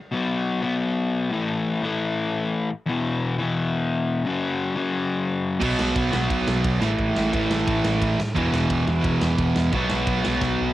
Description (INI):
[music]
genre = punk rock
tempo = 175 BPM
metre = 4/4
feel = straight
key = unclear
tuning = A4 = 441 Hz
[part]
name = crunchy overdriven guitar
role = riff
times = 0.1-10.7 s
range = E2 to B3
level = -23 LUFS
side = left 2 dB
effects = cassette tape
[part]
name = distorted electric guitar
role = riff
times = 5.6-10.7 s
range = E2 to B3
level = -25 LUFS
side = right 6 dB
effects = overdrive, cassette tape
[part]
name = overdriven picked electric bass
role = bass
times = 5.6-10.7 s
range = E1 to A2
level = -28 LUFS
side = equal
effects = none
[part]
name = big rock drum kit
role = drums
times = 5.6-10.5 s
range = crash cymbal, kick drum, ride cymbal, snare drum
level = -28 LUFS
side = right 1 dB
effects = cassette tape
[sound]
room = little or no reverb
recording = home recording on cassette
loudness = -21 LUFS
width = side -14 dB against mid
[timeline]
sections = 0.1-10.7 A section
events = drum fill 10.4-10.7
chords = 0.1 B5; 1.3 A5; 2.9 E5; 4.2 F#5; 5.6 B5; 6.8 A5; 8.4 E5; 9.7 B5